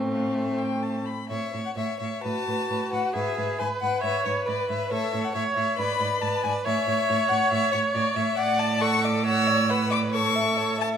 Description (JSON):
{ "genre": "quick classical-period movement for string quartet", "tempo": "136 BPM", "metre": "4/4", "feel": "rubato", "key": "A major", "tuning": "A4 = 445 Hz", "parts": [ { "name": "clear violin", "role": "second line", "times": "0.0-11.0 s", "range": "C4 to F#5", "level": "-31 LUFS", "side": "left 2 dB", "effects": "none" }, { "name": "clear viola", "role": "accompaniment", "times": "0.0-11.0 s", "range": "A3 to D5", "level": "-27 LUFS", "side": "right 3 dB", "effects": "none" }, { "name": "clear cello", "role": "bass", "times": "0.0-11.0 s", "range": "G#2 to A2", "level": "-30 LUFS", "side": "right 4 dB", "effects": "none" }, { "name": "clear violin", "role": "melody", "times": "0.1-10.9 s", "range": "C#5 to E6", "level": "-28 LUFS", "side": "left 7 dB", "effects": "none" } ], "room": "wet recital hall reverb, RT60 1.7 s", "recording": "none", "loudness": "-23 LUFS", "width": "side -8 dB against mid", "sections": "0.0-1.3 A section; 1.3-11.0 A section", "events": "none", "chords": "0.0 Am; 2.2 B5/A; 3.1 E/G#; 4.9 A; 5.8 G#dim; 6.7 A; 8.4 D/A; 10.1 A" }